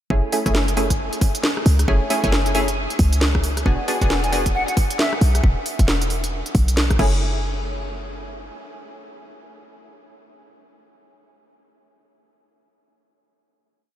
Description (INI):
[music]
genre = UK garage, two-step garage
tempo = 135 BPM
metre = 4/4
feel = swing 61% on 16ths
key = F# minor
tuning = A4 = 440 Hz
[part]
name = punchy chord stab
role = stabs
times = 0.1-10.6 s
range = A3 to G#4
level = -25 LUFS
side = equal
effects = chorus, ping-pong delay
[part]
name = short 808-style bass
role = bass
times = 0.1-8.5 s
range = E1 to C#2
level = -20 LUFS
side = equal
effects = none
[part]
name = electronic kick drum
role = drums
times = 0.1-7.1 s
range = none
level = -21 LUFS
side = equal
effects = none
[part]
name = garage drum kit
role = drums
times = 0.3-7.1 s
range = crash cymbal, hi-hat, rim click, snare drum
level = -24 LUFS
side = equal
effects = none
[part]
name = hollow concert flute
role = melody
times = 4.2-5.1 s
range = E5 to G#5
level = -28 LUFS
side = equal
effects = ping-pong delay
[sound]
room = light reverb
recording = none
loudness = -17 LUFS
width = side -12 dB against mid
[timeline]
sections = 0.1-7.2 groove; 7.2-10.8 final hit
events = none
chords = 0.1 F#m9; 3.7 E9; 7.0 F#m9